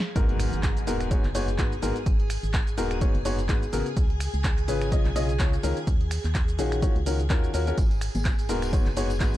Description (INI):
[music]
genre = piano house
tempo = 126 BPM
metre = 4/4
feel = swing 56% on 16ths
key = G# dorian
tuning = A4 = 438 Hz
[part]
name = string machine, violins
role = sustained chords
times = 0.0-9.4 s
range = G#4 to G#5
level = -37 LUFS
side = equal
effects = ensemble chorus, vintage 12-bit sampler grit, sidechain pumping
[part]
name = punchy analog drum machine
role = drums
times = 0.0-9.4 s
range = finger snaps, handclaps, hi-hat, shaker, snare drum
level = -35 LUFS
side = right 1 dB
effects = none
[part]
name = clear upright piano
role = riff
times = 0.2-9.3 s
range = G#2 to D#5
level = -29 LUFS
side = left 2 dB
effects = sidechain pumping, tape echo
[part]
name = organ-like FM bass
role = bass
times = 0.2-9.4 s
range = D#1 to D#2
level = -29 LUFS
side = equal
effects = sidechain pumping
[part]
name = electronic kick drum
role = drums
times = 0.2-9.3 s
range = none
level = -24 LUFS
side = equal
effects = none
[part]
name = impact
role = sound effects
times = 0.2-2.1 s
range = none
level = -34 LUFS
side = equal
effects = none
[part]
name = tambourine and congas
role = percussion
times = 7.8-9.4 s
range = none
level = -37 LUFS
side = left 2 dB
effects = none
[sound]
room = little or no reverb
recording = dark, warm production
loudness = -23 LUFS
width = side -14 dB against mid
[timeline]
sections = 0.2-9.4 A section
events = break 0.0; drum fill 0.0; drop 0.2-9.4; impact 0.2-2.1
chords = 0.2 G#m9; 4.0 C#7; 5.9 D#m11; 7.8 G#m9